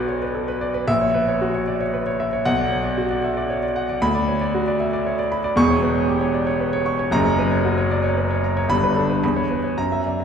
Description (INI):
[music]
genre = classical, virtuoso piano study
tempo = 115 BPM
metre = 3/4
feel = rubato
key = B minor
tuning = A4 = 440 Hz
[part]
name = clear grand piano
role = solo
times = 0.0-10.2 s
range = E1 to C#6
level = -18 LUFS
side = equal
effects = none
[sound]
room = wet concert hall reverb, RT60 2.3 s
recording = heard from further back in the room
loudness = -18 LUFS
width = side -7 dB against mid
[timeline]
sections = 0.0-10.2 A section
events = none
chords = 0.0 Bm; 0.9 F#7/A#; 2.5 Bm; 4.0 Bm/D; 5.6 C#dim/E; 7.1 F#; 8.7 G; 9.2 C#m7/E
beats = 0.36 | 0.88 1.42 1.94 | 2.46 2.97 3.49 | 4.01 4.52 5.04 | 5.55 6.07 6.59 | 7.12 7.64 8.17 | 8.70 9.23 9.77